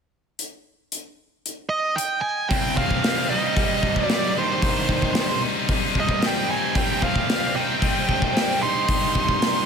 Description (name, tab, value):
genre	heavy metal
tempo	113 BPM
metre	4/4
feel	straight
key	C minor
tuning	A4 = 441 Hz
part	big rock drum kit	drums	0.4-9.5 s	hi-hat, kick drum, snare drum	-24 LUFS	left 1 dB	none
part	high-gain lead guitar	melody	1.7-9.6 s	C5 to C6	-24 LUFS	right 3 dB	distortion, slapback echo, ping-pong delay
part	high-gain lead guitar	second line	2.5-9.6 s	Eb3 to Eb4	-30 LUFS	right 2 dB	distortion, slapback echo, ping-pong delay
part	scooped high-gain guitar	riff	2.5-9.7 s	C2 to Eb4	-28 LUFS	right 10 dB	distortion, slapback echo
part	tight distorted guitar	riff	2.5-9.7 s	C2 to Eb4	-27 LUFS	left 12 dB	distortion, slapback echo
room	moderate lush hall reverb, RT60 2.4 s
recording	big arena sound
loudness	-19 LUFS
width	side -6 dB against mid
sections	0.4-2.5 A section; 2.5-9.7 B section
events	none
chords	0.4 N.C.; 2.5 Cm